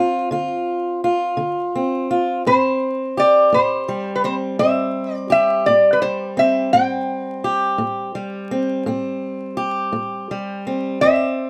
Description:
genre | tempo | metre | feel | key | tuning
acoustic country blues, solo or duo | 56 BPM (dotted quarters) | 12/8 | straight | A minor | A4 = 444 Hz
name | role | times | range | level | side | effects
fingerpicked acoustic archtop guitar | accompaniment | 0.0-11.5 s | F2 to G4 | -23 LUFS | equal | none
lap resonator guitar | melody | 2.5-11.5 s | B4 to G5 | -18 LUFS | equal | none
room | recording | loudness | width
light reverb | close, detailed microphones, vinyl crackle | -19 LUFS | mono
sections
0.0-11.5 A section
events
none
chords
0.0 Dm7; 2.5 Am7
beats
0.30 1.37 | 2.45 3.52 4.60 5.67 | 6.74 7.81 8.88 9.95 | 11.02

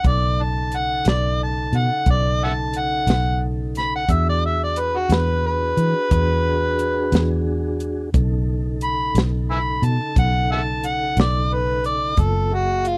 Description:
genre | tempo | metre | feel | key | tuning
slow blues | 59 BPM (dotted quarters) | 12/8 | straight | B mixolydian | A4 = 440 Hz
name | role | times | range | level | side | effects
overdriven harmonica | melody | 0.0-13.0 s | E#4 to B5 | -24 LUFS | equal | none
mellow tonewheel organ | sustained chords | 0.0-13.0 s | C#3 to E5 | -31 LUFS | equal | slow rotary speaker
vintage muted fingered electric bass | bass | 0.0-13.0 s | F#1 to E3 | -24 LUFS | equal | none
compact cocktail drum kit | drums | 0.0-13.0 s | hi-hat, kick drum, snare drum | -22 LUFS | equal | none
room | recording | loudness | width
little or no reverb | dry, close 1970s-style studio recording | -21 LUFS | mono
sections
0.0-13.0 A section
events
harmonica solo 0.0-13.0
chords
0.0 B9; 4.1 E9; 8.1 B9; 12.2 F#9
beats
| 0.04 1.05 2.06 3.08 | 4.09 5.10 6.11 7.12 | 8.14 9.15 10.16 11.17 | 12.18

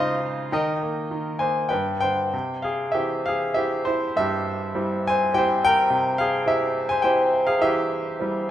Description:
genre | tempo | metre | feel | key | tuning
classical, lyrical solo piano | 93-108 BPM | 3/4 | rubato | unclear | A4 = 436 Hz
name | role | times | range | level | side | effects
bright baby grand piano | solo | 0.0-8.5 s | G2 to Ab5 | -20 LUFS | equal | none
room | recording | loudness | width
moderate recital hall reverb, RT60 1.5 s | minimal, uncompressed stereo recording | -20 LUFS | side -11 dB against mid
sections
0.0-2.3 A section; 2.3-8.5 B section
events
none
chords
0.0 Dbmaj7; 0.5 Eb; 1.7 G; 2.3 C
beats
| 0.51 1.09 1.71 | 2.33 2.95 3.56 | 4.16 4.75 5.34 | 5.90 6.46 7.03 | 7.61 8.20

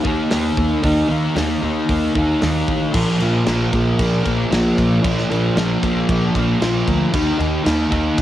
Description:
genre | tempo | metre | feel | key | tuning
rock, shoegaze and dream pop | 114 BPM | 4/4 | straight | unclear | A4 = 439 Hz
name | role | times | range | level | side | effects
fuzz guitar | riff | 0.0-8.2 s | Bb2 to Eb4 | -17 LUFS | equal | distortion, analog chorus, cassette tape
upright bass | bass | 0.0-8.2 s | A1 to Eb2 | -23 LUFS | equal | none
loose indie drum kit | drums | 0.0-8.2 s | crash cymbal, hi-hat, kick drum, snare drum | -24 LUFS | equal | cassette tape
room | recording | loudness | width
light reverb | home recording on cassette | -16 LUFS | side -12 dB against mid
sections
0.0-2.9 A section; 2.9-8.2 B section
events
none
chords
0.0 Eb5; 2.9 Bb5; 7.1 Eb5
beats
0.32 | 0.84 1.37 1.89 2.42 | 2.94 3.47 3.99 4.52 | 5.04 5.57 6.09 6.61 | 7.14 7.66 8.19

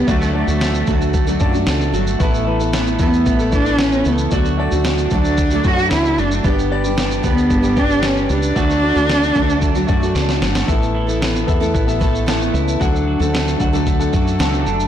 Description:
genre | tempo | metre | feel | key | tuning
acoustic pop | 113 BPM | 4/4 | straight | D major | A4 = 440 Hz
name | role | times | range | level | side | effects
warm cello | melody | 0.0-10.2 s | A3 to F#4 | -18 LUFS | right 1 dB | none
clear concert grand piano | accompaniment | 0.0-14.9 s | A3 to F#5 | -26 LUFS | left 7 dB | none
picked steel-string acoustic guitar | accompaniment | 0.0-14.9 s | G2 to A4 | -22 LUFS | equal | double-tracked left and right
twelve-string electric guitar | arpeggios | 0.0-14.9 s | E3 to G4 | -26 LUFS | right 9 dB | none
woody fretless electric bass | bass | 0.0-14.9 s | F#1 to F#2 | -20 LUFS | equal | tube saturation
dusty soul sampler-style drum kit | drums | 0.1-14.9 s | kick drum, shaker, snare drum | -20 LUFS | equal | none
room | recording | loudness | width
light reverb | blown-out, overdriven recording, overdrive | -14 LUFS | side -10 dB against mid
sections
0.0-10.7 A section; 10.7-14.9 B section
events
drum fill 10.2-10.7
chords
0.1 D; 2.2 Asus2; 4.3 D; 6.4 G; 8.6 D; 10.7 Asus2; 12.8 D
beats
| 0.08 0.61 1.14 1.67 | 2.20 2.73 3.26 3.79 | 4.32 4.85 5.38 5.91 | 6.44 6.97 7.50 8.03 | 8.56 9.09 9.62 10.15 | 10.68 11.21 11.74 12.27 | 12.80 13.33 13.87 14.39

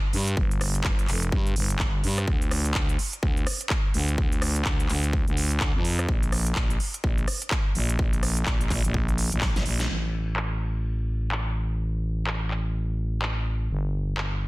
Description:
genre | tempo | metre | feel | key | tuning
bass house | 126 BPM | 4/4 | swing 60% on 16ths | unclear | A4 = 436 Hz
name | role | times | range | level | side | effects
growling FM bass | bass | 0.1-14.5 s | F1 to G2 | -26 LUFS | equal | tube saturation, sidechain pumping
big-room dance drum kit | drums | 0.1-14.3 s | crash cymbal, handclaps, hi-hat, rim click, snare drum | -30 LUFS | equal | low-pass filter on hats, studio reverb, low-pass filter on snare, low-pass filter on cymbals
electronic kick drum | drums | 0.4-9.5 s | none | -26 LUFS | equal | studio reverb
room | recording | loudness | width
little or no reverb | dense, heavily limited modern master | -23 LUFS | side -21 dB against mid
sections
0.0-9.9 A section; 9.9-14.5 B section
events
drum fill 9.4-9.9; band accent 9.8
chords
none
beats
| 0.37 0.85 1.32 1.80 | 2.28 2.75 3.23 3.70 | 4.18 4.66 5.13 5.61 | 6.08 6.56 7.04 7.51 | 7.99 8.47 8.94 9.42 | 9.89 10.37 10.85 11.32 | 11.80 12.28 12.75 13.23 | 13.70 14.18

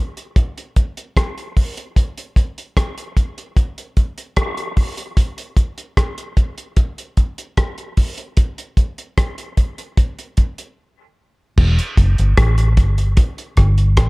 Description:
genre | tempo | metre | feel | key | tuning
dub reggae | 75 BPM | 4/4 | straight | unclear | A4 = 441 Hz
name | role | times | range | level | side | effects
cloth-damped thuddy drum kit | drums | 0.2-14.1 s | crash cymbal, hi-hat, kick drum, rim click | -16 LUFS | equal | none
vintage muted fingered electric bass | bass | 11.6-14.1 s | E1 to A1 | -14 LUFS | equal | none
room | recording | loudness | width
little or no reverb | none | -16 LUFS | side -26 dB against mid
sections
0.0-11.6 A section; 11.6-14.1 B section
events
break 10.8-11.6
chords
none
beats
0.36 1.17 | 1.97 2.77 3.57 4.37 | 5.17 5.97 6.77 7.57 | 8.38 9.18 9.98 10.78 | 11.58 12.38 13.18 13.97

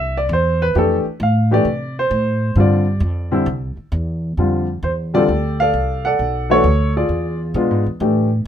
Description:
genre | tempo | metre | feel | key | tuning
jazz piano trio | 132 BPM | 4/4 | swing 67% on 8ths | F major | A4 = 440 Hz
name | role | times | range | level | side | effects
warm baby grand piano | melody | 0.0-8.3 s | D3 to Gb5 | -17 LUFS | left 1 dB | none
upright bass | bass | 0.0-8.4 s | B1 to C3 | -19 LUFS | equal | none
room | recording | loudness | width
light reverb | minimal, uncompressed stereo recording | -15 LUFS | side -9 dB against mid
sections
0.0-4.4 A section; 4.4-8.5 B section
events
grand piano solo 0.0-4.4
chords
0.0 C; 0.7 F69; 2.6 G5; 3.5 C; 4.4 F69; 6.2 Bm7; 7.1 E7b9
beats
0.29 | 0.75 1.20 1.65 2.11 | 2.56 3.01 3.47 3.92 | 4.37 4.83 5.28 5.73 | 6.19 6.64 7.09 7.55 | 8.00

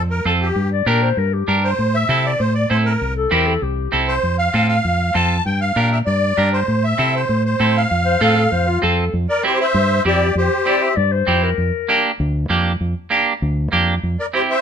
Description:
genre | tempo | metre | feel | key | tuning
latin | 196 BPM | 4/4 | straight | unclear | A4 = 440 Hz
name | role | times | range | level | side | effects
musette accordion | melody | 0.0-10.9, 14.2-14.6 s | G4 to A5 | -19 LUFS | equal | none
fingered electric bass | bass | 0.0-14.2 s | C2 to C3 | -19 LUFS | equal | none
clean electric guitar | accompaniment | 0.3-14.6 s | Bb3 to Bb4 | -19 LUFS | right 3 dB | none
breathy clarinet | second line | 0.7-4.0, 8.1-12.0 s | F4 to E5 | -21 LUFS | left 7 dB | none
room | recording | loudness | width
moderate studio reverb, RT60 0.8 s | minimal, uncompressed stereo recording | -15 LUFS | side -8 dB against mid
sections
0.0-9.1 A section; 9.1-14.6 B section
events
none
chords
0.0 F; 0.6 Gm; 1.8 Am; 3.0 C; 4.2 F; 5.5 Gm; 6.7 Am; 7.9 F; 9.1 C/F; 11.6 Gm; 14.0 C/F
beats
0.26 | 0.56 0.87 1.18 1.48 | 1.79 2.09 2.40 2.70 | 3.01 3.32 3.62 3.93 | 4.23 4.54 4.84 5.15 | 5.46 5.76 6.07 6.38 | 6.68 6.99 7.29 7.60 | 7.91 8.21 8.52 8.83 | 9.13 9.44 9.74 10.05 | 10.36 10.66 10.97 11.28 | 11.58 11.89 12.20 12.50 | 12.81 13.12 13.42 13.73 | 14.03 14.34

